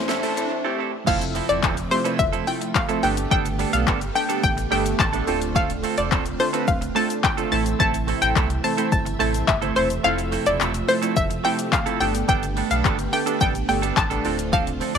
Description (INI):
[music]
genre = dance-pop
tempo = 107 BPM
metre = 4/4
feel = straight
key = unclear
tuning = A4 = 439 Hz
[part]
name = concert harp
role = melody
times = 0.0-1.7 s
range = C5 to D5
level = -34 LUFS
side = left 6 dB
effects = tape echo
[part]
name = chorused retro synth keys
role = accompaniment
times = 0.0-15.0 s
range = A3 to C5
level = -28 LUFS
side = right 1 dB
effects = sidechain pumping
[part]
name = string machine, violins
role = sustained chords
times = 0.0-15.0 s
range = C3 to E5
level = -30 LUFS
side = right 2 dB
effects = ensemble chorus, sidechain pumping
[part]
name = sub bass with octave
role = bass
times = 0.0-15.0 s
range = D1 to E2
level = -28 LUFS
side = right 1 dB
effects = sidechain pumping
[part]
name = riser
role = sound effects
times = 0.0-0.5 s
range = none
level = -32 LUFS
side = right 2 dB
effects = none
[part]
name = direct-recorded clean electric guitar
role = riff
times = 0.1-15.0 s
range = F3 to A4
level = -28 LUFS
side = right 17 dB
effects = lush chorus
[part]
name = deep house drum kit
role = drums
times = 0.1-15.0 s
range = crash cymbal, handclaps, hi-hat, kick drum, shaker, snare drum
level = -25 LUFS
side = left 3 dB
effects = overdrive
[part]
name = analog pluck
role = melody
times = 1.1-15.0 s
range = C5 to A5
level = -24 LUFS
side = left 2 dB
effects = chorus, tape echo
[sound]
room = light reverb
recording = 1960s-style stereo with parts hard left and right, high-pass filter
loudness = -19 LUFS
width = side -7 dB against mid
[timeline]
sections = 0.0-1.1 A section; 1.1-15.0 B section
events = build-up 0.0-1.1; drum fill 0.0-0.5; riser 0.0-1.1; break 0.5-1.1; drop 1.1-15.0; kick muted 10.0-11.2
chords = 0.0 Am; 1.1 Fmaj7; 3.0 Gadd9; 5.3 Dm7; 7.5 Am; 10.0 Fmaj7; 12.0 Gadd9; 14.2 Dm7